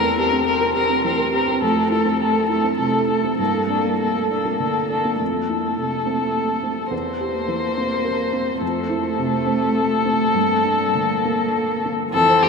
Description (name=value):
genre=neoclassical piano and strings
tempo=104 BPM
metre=3/4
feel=rubato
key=F major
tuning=A4 = 441 Hz
part: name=muted violin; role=melody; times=0.0-12.5 s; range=G4 to C5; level=-20 LUFS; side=left 3 dB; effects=none
part: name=muted cello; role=second line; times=0.0-12.5 s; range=E3 to C4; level=-24 LUFS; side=right 3 dB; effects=none
part: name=dark upright piano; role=accompaniment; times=0.0-12.5 s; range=E2 to C5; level=-23 LUFS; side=right 1 dB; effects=none
part: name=muted viola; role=accompaniment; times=12.1-12.5 s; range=C4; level=-27 LUFS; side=right 4 dB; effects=none
room=wet huge ambient reverb, RT60 8.6 s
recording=in a vast, echoing space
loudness=-18 LUFS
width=side -4 dB against mid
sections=0.0-5.2 A section; 5.2-12.1 B section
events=none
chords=0.0 C7/E; 1.6 Fmaj7; 3.4 Gmadd9; 5.2 Fmaj7; 6.9 C7/E; 8.6 Fmaj7; 10.4 Gmadd9